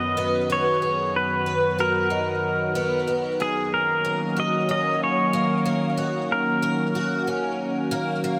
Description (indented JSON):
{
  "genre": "dream pop",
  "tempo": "93 BPM",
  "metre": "4/4",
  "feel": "straight",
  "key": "F# major",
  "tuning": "A4 = 440 Hz",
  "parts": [
    { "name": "pedal steel guitar", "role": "melody", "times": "0.0-8.2 s", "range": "G#4 to D#5", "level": "-27 LUFS", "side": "equal", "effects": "digital delay" },
    { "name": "phased analog pad", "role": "sustained chords", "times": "0.0-8.4 s", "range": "F#2 to F#4", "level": "-28 LUFS", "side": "equal", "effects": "phaser, chorus" },
    { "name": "picked twelve-string acoustic guitar", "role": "arpeggios", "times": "0.0-8.4 s", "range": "A#3 to B4", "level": "-30 LUFS", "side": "equal", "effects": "ensemble chorus, digital delay" }
  ],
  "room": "wet huge ambient reverb, RT60 5.8 s",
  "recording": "none",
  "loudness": "-23 LUFS",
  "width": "mono",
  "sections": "0.0-8.4 A section",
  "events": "none",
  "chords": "0.0 Bmaj7/F#; 3.7 F#6"
}